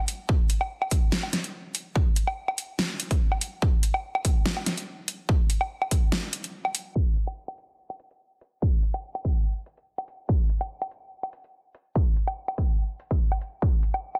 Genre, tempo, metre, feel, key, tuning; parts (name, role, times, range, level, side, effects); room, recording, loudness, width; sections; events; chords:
dubstep; 144 BPM; 4/4; swing 53% on 16ths, half-time
dubstep drum kit; drums; 0.1-14.2 s; crash cymbal, hi-hat, snare drum, woodblock; -31 LUFS; equal; studio ambience
electronic kick drum; drums; 0.3-13.7 s; -25 LUFS; equal; studio ambience
little or no reverb; dense, heavily limited modern master, low-pass filter, lossy compression artefacts; -27 LUFS; mono
0.0-7.0 A section; 7.0-14.2 B section
drop 0.0-7.0; break 6.1-7.0; filter sweep 7.0-14.2